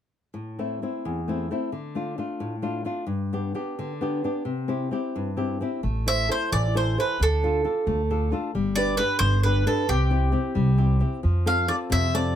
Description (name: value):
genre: italian folk, Italian serenade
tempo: 88 BPM (dotted quarters)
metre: 6/8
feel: rubato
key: A minor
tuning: A4 = 441 Hz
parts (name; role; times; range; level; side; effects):
- nylon-string guitar; accompaniment; 0.3-12.4 s; E2 to C5; -27 LUFS; left 2 dB; none
- upright bass; bass; 5.8-12.4 s; G1 to F2; -23 LUFS; equal; none
- bowl-back mandolin; melody; 6.1-12.4 s; G4 to F5; -25 LUFS; right 2 dB; none
room: little or no reverb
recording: close, detailed microphones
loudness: -22 LUFS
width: side -10 dB against mid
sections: 0.3-5.8 A section; 5.8-12.4 B section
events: none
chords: 0.3 Am; 1.7 Dm; 3.1 G; 4.5 C; 5.8 Am; 7.2 Dm; 8.6 G; 9.9 C; 11.3 F